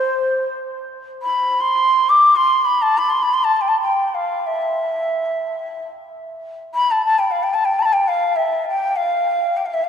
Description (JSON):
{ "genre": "Arabic maqam ensemble", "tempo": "free time", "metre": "none", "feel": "none", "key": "C maqam ajam", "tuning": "A4 = 439 Hz", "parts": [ { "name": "breathy reedy ney", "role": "solo", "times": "0.0-9.9 s", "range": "C5 to D6", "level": "-16 LUFS", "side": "equal", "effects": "none" } ], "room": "wet cathedral reverb, RT60 4.6 s", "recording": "recorded in a church or concert hall", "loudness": "-16 LUFS", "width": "side -8 dB against mid", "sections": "0.8-9.9 A section", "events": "none", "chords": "none" }